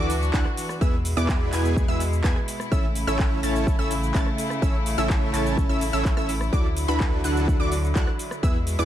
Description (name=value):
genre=EDM, festival progressive house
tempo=126 BPM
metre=4/4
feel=straight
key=A major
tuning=A4 = 438 Hz
part: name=rich chamber string section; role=sustained chords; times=0.0-8.8 s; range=B2 to F#4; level=-30 LUFS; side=equal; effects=sidechain pumping
part: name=wide unison pluck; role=arpeggios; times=0.0-8.8 s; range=B5 to A6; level=-33 LUFS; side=equal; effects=sidechain pumping, ping-pong delay
part: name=dense compressed supersaw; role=riff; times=0.0-8.8 s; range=B3 to A5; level=-28 LUFS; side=right 1 dB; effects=sidechain pumping, ping-pong delay
part: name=saturated sub bass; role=bass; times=0.0-8.8 s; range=A1 to E2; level=-27 LUFS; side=equal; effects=sidechain pumping
part: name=impact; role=sound effects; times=0.8 s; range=none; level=barely audible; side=none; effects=none
part: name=big-room dance drum kit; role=drums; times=0.1-8.8 s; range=handclaps, hi-hat, rim click, shaker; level=-34 LUFS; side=equal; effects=none
part: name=electronic kick drum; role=drums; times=0.3-8.5 s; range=none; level=-24 LUFS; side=equal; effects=none
room=little or no reverb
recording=dark, warm production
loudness=-21 LUFS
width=side -11 dB against mid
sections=0.0-8.8 A section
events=impact 0.0-0.8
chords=0.0 Dadd9; 0.8 E; 2.7 A; 6.5 Dadd9